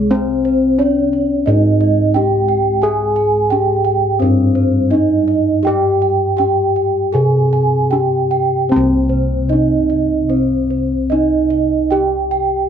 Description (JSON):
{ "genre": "Javanese gamelan", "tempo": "75-88 BPM", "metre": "4/4", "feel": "straight", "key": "C pelog", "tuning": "A4 = 441 Hz", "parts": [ { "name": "gamelan-type bronze metallophone", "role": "melody", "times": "0.0-12.7 s", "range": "Ab3 to Ab4", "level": "-16 LUFS", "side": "left 1 dB", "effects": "none" }, { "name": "gamelan-type bronze metallophone", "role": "arpeggios", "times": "0.0-12.7 s", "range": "C5 to Ab5", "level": "-19 LUFS", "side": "right 6 dB", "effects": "none" }, { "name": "gamelan-type bossed gongs", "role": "bass", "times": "0.0-12.7 s", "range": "C2 to Ab4", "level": "-18 LUFS", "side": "equal", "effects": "none" } ], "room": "light reverb", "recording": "close, detailed microphones", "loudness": "-12 LUFS", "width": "side -8 dB against mid", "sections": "0.0-8.7 A section; 8.7-12.7 B section", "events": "none", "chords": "none" }